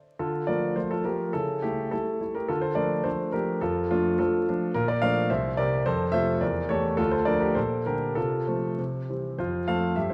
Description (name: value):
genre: classical-period piano sonatina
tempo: 105 BPM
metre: 2/4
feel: rubato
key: D minor, F major from 4.7 s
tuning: A4 = 442 Hz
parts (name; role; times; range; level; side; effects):
- clear grand piano; solo; 0.2-10.1 s; C2 to F5; -27 LUFS; equal; none
room: wet recital hall reverb, RT60 1.5 s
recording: vinyl crackle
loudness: -27 LUFS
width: mono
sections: 0.2-9.4 A section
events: none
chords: 0.2 Dm; 1.3 A7/C#; 2.5 Dm; 3.6 Dm/F; 4.7 Bbmaj7; 5.3 C; 5.9 F; 6.4 A7/E; 7.0 Dm; 7.6 Gm/Bb; 8.2 F/C; 8.8 C; 9.4 F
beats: | 0.19 0.77 | 1.35 1.93 | 2.50 3.06 | 3.62 4.19 | 4.74 5.30 | 5.86 6.42 | 6.99 7.57 | 8.17 8.79 | 9.39 9.97